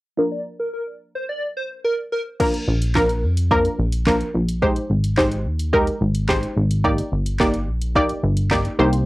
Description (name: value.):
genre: dance-pop.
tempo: 108 BPM.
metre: 4/4.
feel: straight.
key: unclear.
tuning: A4 = 440 Hz.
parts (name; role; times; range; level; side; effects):
punchy chord stab; accompaniment; 0.2-9.1 s; F3 to D5; -19 LUFS; equal; chorus, sidechain pumping, low-pass filter, cassette tape.
plucky unison lead; melody; 0.3-2.2 s; Bb4 to D5; -25 LUFS; equal; low-pass filter, cassette tape, tape echo.
deep house drum kit; drums; 2.4-9.1 s; crash cymbal, handclaps, hi-hat, kick drum, snare drum; -25 LUFS; equal; cassette tape.
plucky analog bass; bass; 2.7-9.1 s; G1 to F2; -20 LUFS; equal; sidechain pumping.
room: light reverb.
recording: home recording on cassette.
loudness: -18 LUFS.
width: side -19 dB against mid.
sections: 0.2-2.4 A section; 2.4-9.1 B section.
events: filter sweep 0.2-2.4.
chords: 0.2 Bb; 4.6 Abmaj7; 6.8 Ebmaj7/G.